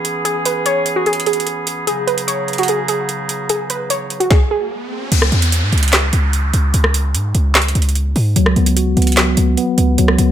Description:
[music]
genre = hip hop, trap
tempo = 148 BPM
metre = 4/4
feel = half-time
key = C# minor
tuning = A4 = 440 Hz
[part]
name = warbly dusty pluck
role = melody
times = 0.0-5.1 s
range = F#4 to C#5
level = -19 LUFS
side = right 1 dB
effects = chorus, tape echo
[part]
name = warm woodwind section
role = sustained chords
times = 0.0-4.3 s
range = C#3 to G#4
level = -21 LUFS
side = right 2 dB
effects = none
[part]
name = trap drum kit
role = drums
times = 0.0-10.3 s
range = crash cymbal, handclaps, hi-hat, kick drum, rim click, snare drum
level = -17 LUFS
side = right 1 dB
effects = none
[part]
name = riser and downlifter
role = sound effects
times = 4.5-8.4 s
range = none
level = -25 LUFS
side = equal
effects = none
[part]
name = hard-hitting 808-style bass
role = bass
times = 5.1-10.3 s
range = C#2 to G#2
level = -14 LUFS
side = equal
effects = none
[part]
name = mellow tine electric piano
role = accompaniment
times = 8.4-10.3 s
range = F#3 to F#4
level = -16 LUFS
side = left 1 dB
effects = medium stereo tremolo, low-pass filter
[sound]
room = light reverb, digital ambience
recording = none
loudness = -13 LUFS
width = side -10 dB against mid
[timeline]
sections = 0.0-5.1 A section; 5.1-10.3 B section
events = riser 4.5-5.1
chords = 0.0 C#m7; 1.9 G#m7/C#; 5.1 C#5; 8.4 C#7sus4

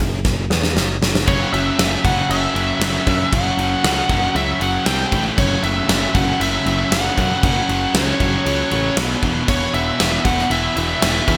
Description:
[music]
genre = hard rock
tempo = 117 BPM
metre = 4/4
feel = straight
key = F# minor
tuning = A4 = 440 Hz
[part]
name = picked electric bass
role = bass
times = 0.0-11.4 s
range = E1 to F#2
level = -26 LUFS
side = equal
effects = none
[part]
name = gated 80s drum kit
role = drums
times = 0.0-11.4 s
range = crash cymbal, kick drum, ride cymbal, snare drum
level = -22 LUFS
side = equal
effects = gated reverb
[part]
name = bluesy overdriven lead guitar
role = melody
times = 1.3-11.4 s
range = C#5 to G5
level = -24 LUFS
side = equal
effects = distortion
[part]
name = crunchy overdriven guitar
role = riff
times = 1.3-11.4 s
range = E2 to C4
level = -26 LUFS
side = equal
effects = spring reverb
[part]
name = high-gain distorted guitar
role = riff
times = 1.3-11.4 s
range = E2 to C4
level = -26 LUFS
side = equal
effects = distortion
[sound]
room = moderate lush hall reverb, RT60 1.7 s, small room ambience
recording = bright 1980s-style digital production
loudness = -18 LUFS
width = mono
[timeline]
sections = 0.0-1.3 A section; 1.3-11.4 B section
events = drum fill 0.2-1.3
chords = 0.0 Esus2/F#; 1.3 F#5; 4.9 C5; 5.1 A5; 5.4 F#m; 9.0 B5; 9.2 E5

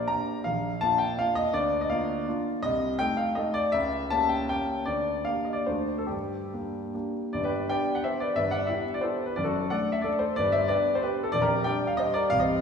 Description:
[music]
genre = classical, romantic triple-time dance for piano with dotted rhythms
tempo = 132-196 BPM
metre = 3/4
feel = rubato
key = G minor, G major from 7.3 s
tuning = A4 = 440 Hz
[part]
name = warm grand piano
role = solo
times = 0.0-12.6 s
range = Bb0 to Bb5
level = -25 LUFS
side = left 1 dB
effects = none
[sound]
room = wet scoring stage reverb, RT60 2.0 s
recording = recorded in a church or concert hall, vinyl crackle, small room ambience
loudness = -25 LUFS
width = side -6 dB against mid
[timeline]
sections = 0.0-7.3 A section; 7.3-12.6 B section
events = none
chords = 0.5 Bb; 1.6 Bb/D; 2.6 Adim/C; 3.7 C#dim7; 4.9 Gm/D; 5.7 D7; 6.1 Gm; 7.3 G; 8.4 Em/G; 9.4 D/F#; 10.4 G; 11.3 Gm/Bb

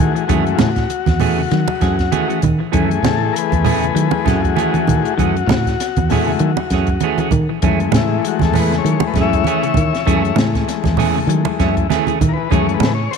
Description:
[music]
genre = afrobeat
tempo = 98 BPM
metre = 4/4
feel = swing 56% on 16ths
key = F# dorian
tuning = A4 = 440 Hz
[part]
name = combo organ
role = accompaniment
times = 0.0-13.1 s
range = E3 to E5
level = -20 LUFS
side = left 12 dB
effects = none
[part]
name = semi-hollow electric guitar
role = arpeggios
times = 0.0-13.0 s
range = C#3 to F#3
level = -25 LUFS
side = left 12 dB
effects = none
[part]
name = fingered electric bass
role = bass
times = 0.0-13.1 s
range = E2 to D#3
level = -18 LUFS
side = right 1 dB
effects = none
[part]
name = compact cocktail drum kit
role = drums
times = 0.0-13.2 s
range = hi-hat, kick drum, snare drum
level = -21 LUFS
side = right 1 dB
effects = none
[part]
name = clean electric guitar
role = stabs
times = 0.2-13.2 s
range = E3 to G#4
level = -22 LUFS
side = right 12 dB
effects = tape echo
[part]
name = congas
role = percussion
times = 0.3-13.2 s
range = none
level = -21 LUFS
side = right 9 dB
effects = none
[sound]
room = light reverb, studio reverb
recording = 1960s-style stereo with parts hard left and right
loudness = -14 LUFS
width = side -6 dB against mid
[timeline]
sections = 0.0-13.2 A section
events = transistor combo organ solo 0.0-13.2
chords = 0.0 F#m9

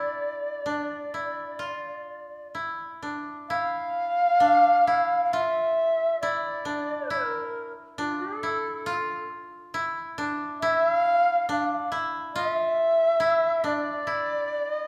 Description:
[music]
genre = japanese traditional, Japanese chamber music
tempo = 68 BPM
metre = 4/4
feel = uneven beats, rubato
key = D hirajoshi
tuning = A4 = 441 Hz
[part]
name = bright reedy long shakuhachi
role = melody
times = 0.0-14.9 s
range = A4 to F5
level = -26 LUFS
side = equal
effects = none
[part]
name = koto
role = second line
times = 0.0-14.9 s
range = D4 to F4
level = -32 LUFS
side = equal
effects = none
[sound]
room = wet recital hall reverb, RT60 1.6 s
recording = recorded in a church or concert hall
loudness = -26 LUFS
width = mono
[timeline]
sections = 0.0-3.5 A section; 3.5-14.9 B section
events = none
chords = none

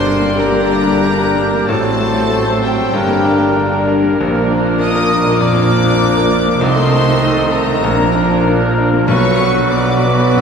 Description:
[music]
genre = classical, romantic movement for piano and orchestra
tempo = 96 BPM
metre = 4/4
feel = rubato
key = unclear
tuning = A4 = 440 Hz
[part]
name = bright grand piano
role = melody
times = 0.0-10.4 s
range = Bb1 to C5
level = -17 LUFS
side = left 2 dB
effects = none
[part]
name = warm symphonic violin section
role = melody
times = 0.0-10.4 s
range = G5 to E6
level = -23 LUFS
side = left 3 dB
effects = none
[part]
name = mellow cor anglais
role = second line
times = 0.0-10.4 s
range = G4 to B4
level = -25 LUFS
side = right 2 dB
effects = none
[part]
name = silver concert flute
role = second line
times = 0.0-10.4 s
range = G5 to E6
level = -24 LUFS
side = left 2 dB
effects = none
[part]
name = warm clarinet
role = second line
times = 0.0-10.4 s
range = C4 to F#4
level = -26 LUFS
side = left 1 dB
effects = none
[part]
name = warm symphonic violin section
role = second line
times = 0.0-10.4 s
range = G4 to E5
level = -24 LUFS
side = equal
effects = none
[part]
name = warm bassoon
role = accompaniment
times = 0.0-10.4 s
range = Eb3 to G3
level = -22 LUFS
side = right 2 dB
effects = none
[part]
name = warm studio viola section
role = accompaniment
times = 0.0-10.4 s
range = B3 to Bb4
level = -26 LUFS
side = right 1 dB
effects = none
[part]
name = warm French horn section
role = sustained chords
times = 0.0-10.4 s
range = Bb3 to A4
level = -22 LUFS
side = left 4 dB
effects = none
[part]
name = warm trombone section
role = sustained chords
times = 0.0-10.4 s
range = D3 to Bb3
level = -26 LUFS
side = right 4 dB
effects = none
[part]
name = warm trumpet section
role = stabs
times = 0.0-10.4 s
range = Bb4 to Eb5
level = -23 LUFS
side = equal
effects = none
[part]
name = dark studio cello section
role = bass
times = 0.0-10.4 s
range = G2 to C3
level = -21 LUFS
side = right 2 dB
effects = none
[part]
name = warm symphonic double bass section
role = bass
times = 0.0-10.4 s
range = G1 to C2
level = -22 LUFS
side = right 3 dB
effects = none
[part]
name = timpani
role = percussion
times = 9.1-10.0 s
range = B2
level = -22 LUFS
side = left 2 dB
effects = none
[sound]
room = wet church reverb, RT60 3.6 s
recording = none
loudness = -11 LUFS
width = side -6 dB against mid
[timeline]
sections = 0.0-10.4 A section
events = none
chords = 0.0 Gm; 1.7 F#dim/A; 2.9 Gm; 4.2 Bb; 6.6 Adim/C; 7.8 Bb; 9.1 Bm

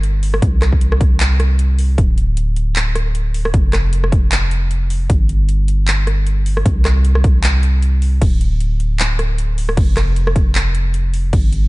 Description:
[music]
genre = future bass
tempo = 154 BPM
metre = 4/4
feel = swing 56% on 16ths, half-time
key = unclear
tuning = A4 = 443 Hz
[part]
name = long sustained 808-style bass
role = bass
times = 0.0-11.7 s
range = D1 to C2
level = -15 LUFS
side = equal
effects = sidechain pumping
[part]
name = trap drum kit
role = drums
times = 0.0-11.6 s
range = crash cymbal, handclaps, hi-hat, rim click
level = -22 LUFS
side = equal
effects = none
[part]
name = electronic kick drum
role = drums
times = 0.4-11.4 s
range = none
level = -15 LUFS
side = equal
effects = overdrive
[sound]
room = little or no reverb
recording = dark, warm production, nothing above 10.7 kHz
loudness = -13 LUFS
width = side -21 dB against mid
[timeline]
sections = 0.0-11.7 A section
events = kick drops out 1.2-2.0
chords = none

